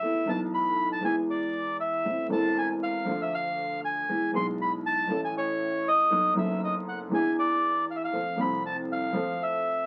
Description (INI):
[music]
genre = tango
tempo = 118 BPM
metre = 4/4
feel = rubato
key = unclear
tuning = A4 = 440 Hz
[part]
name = bandoneon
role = melody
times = 0.0-9.9 s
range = C#5 to C6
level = -30 LUFS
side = equal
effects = none
[part]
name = dark upright piano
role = accompaniment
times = 0.0-9.9 s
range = E1 to A4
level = -32 LUFS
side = equal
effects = none
[part]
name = upright bass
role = bass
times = 0.0-9.9 s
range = E1 to F2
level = -52 LUFS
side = equal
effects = none
[sound]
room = moderate studio reverb, RT60 0.6 s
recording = very old 78 rpm record, vinyl crackle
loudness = -28 LUFS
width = mono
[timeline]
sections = 0.0-9.9 A section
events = none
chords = 0.0 Esus4; 1.0 E; 2.1 Am; 3.1 Dm; 4.1 E; 5.1 A; 6.1 B7; 7.1 E7; 8.1 F